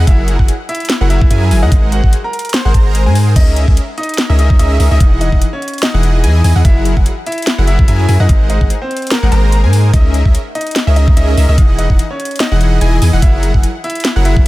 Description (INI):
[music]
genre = future bass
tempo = 146 BPM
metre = 4/4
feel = swing 56% on 16ths, half-time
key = C# dorian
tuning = A4 = 442 Hz
[part]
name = wide unison pluck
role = arpeggios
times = 0.0-14.5 s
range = E5 to A#5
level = -28 LUFS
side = equal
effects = cassette tape, sidechain pumping, ping-pong delay
[part]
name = big bright polysynth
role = riff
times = 0.0-14.5 s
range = E3 to A#5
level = -20 LUFS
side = left 1 dB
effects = chorus, sidechain pumping
[part]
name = long sustained 808-style bass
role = bass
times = 0.0-14.5 s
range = E1 to G#2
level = -11 LUFS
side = equal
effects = sidechain pumping
[part]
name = bright grand piano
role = melody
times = 0.1-14.5 s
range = A#3 to B#5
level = -22 LUFS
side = equal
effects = sidechain pumping, digital delay
[part]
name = electronic kick drum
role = drums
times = 0.1-14.4 s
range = none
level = -10 LUFS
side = equal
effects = none
[part]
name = trap drum kit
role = drums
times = 0.1-14.3 s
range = crash cymbal, hi-hat, snare drum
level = -19 LUFS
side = equal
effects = none
[sound]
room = little or no reverb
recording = none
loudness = -9 LUFS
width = side -18 dB against mid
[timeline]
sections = 0.0-14.5 A section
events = none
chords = 0.1 F#7; 1.7 G#7; 3.4 C#m69; 5.0 Emaj7; 6.6 F#7; 8.3 G#7; 9.9 C#m69; 11.6 Emaj7; 13.2 F#7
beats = | 0.07 0.48 0.90 1.31 | 1.72 2.13 2.54 2.95 | 3.36 3.77 4.18 4.59 | 5.00 5.42 5.83 6.24 | 6.65 7.06 7.47 7.88 | 8.29 8.70 9.11 9.53 | 9.94 10.35 10.76 11.17 | 11.58 11.99 12.40 12.81 | 13.22 13.63 14.05 14.46